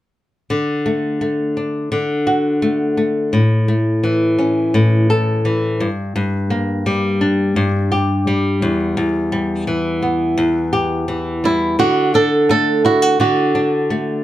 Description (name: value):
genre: pop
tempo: 85 BPM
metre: 4/4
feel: straight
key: D major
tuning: A4 = 442 Hz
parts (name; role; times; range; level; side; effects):
- flamenco guitar; accompaniment; 0.5-14.2 s; E2 to A4; -16 LUFS; left 1 dB; none
- flamenco guitar; melody; 11.5-14.2 s; E4 to A4; -16 LUFS; right 4 dB; none
room: light reverb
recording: none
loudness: -15 LUFS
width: side -14 dB against mid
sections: 0.5-11.8 A section; 11.8-14.2 B section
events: none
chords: 0.5 D; 3.3 A; 5.8 Gm; 8.6 Em; 11.8 D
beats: | 0.50 1.21 1.92 2.62 | 3.33 4.04 4.74 5.45 | 6.16 6.86 7.57 8.27 | 8.97 9.68 10.38 11.09 | 11.79 12.49 13.20 13.90